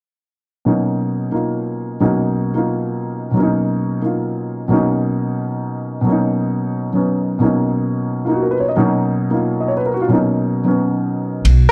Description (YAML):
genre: modal jazz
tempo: 178 BPM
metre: 4/4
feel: swing 62% on 8ths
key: B lydian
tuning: A4 = 444 Hz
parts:
  - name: warm baby grand piano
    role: accompaniment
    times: 0.7-11.5 s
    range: B2 to D#5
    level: -18 LUFS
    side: equal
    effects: none
  - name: upright bass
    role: bass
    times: 11.4-11.7 s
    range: B1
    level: -12 LUFS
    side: equal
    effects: none
  - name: ride cymbal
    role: drums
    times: 11.4-11.5 s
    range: none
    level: -30 LUFS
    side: equal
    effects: none
room: studio reverb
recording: dry, close 1970s-style studio recording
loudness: -18 LUFS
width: mono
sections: 0.7-11.5 A section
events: none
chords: 0.7 Bmaj9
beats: | 0.65 0.99 1.33 1.67 | 2.01 2.34 2.68 3.02 | 3.36 3.70 4.04 4.37 | 4.71 5.05 5.39 5.72 | 6.06 6.40 6.74 7.07 | 7.41 7.75 8.09 8.42 | 8.76 9.10 9.43 9.77 | 10.11 10.44 10.78 11.12 | 11.45